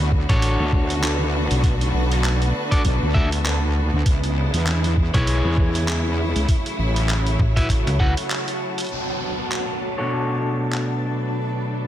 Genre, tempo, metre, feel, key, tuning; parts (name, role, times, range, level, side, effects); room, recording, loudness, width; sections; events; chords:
glitch hop; 99 BPM; 4/4; swing 57% on 16ths; B dorian; A4 = 439 Hz
bright studio string section; sustained chords; 0.0-11.9 s; B2 to F#4; -29 LUFS; equal; sidechain pumping, low-pass filter
wobble bass; bass; 0.0-7.4 s; A1 to E2; -21 LUFS; equal; chorus
granular cloud pad; texture; 0.0-11.9 s; D4 to B5; -29 LUFS; equal; built-in reverb, sidechain pumping
electronic kick drum; drums; 0.1-8.1 s; -20 LUFS; equal; studio reverb
electric guitar at the edge of break-up; stabs; 0.3-11.9 s; B2 to F#5; -25 LUFS; left 1 dB; vintage 12-bit sampler grit, sidechain pumping, low-pass filter, ping-pong delay
slap-like FM bass; bass; 0.3-0.6, 5.1-8.1 s; A1 to C#2; -20 LUFS; equal
boom bap sampler-style drum kit; drums; 0.3-10.9 s; handclaps, hi-hat; -29 LUFS; right 1 dB; studio reverb
downlifter; sound effects; 8.9-11.9 s; -31 LUFS; equal
digital ambience; -18 LUFS; side -12 dB against mid
0.0-8.9 A section; 8.9-11.9 B section
break 8.3-8.9; band accent 8.3-8.6; filter sweep on string section 8.9-11.9
0.0 Bm7; 4.1 C#m7; 6.5 A6; 8.9 Bm7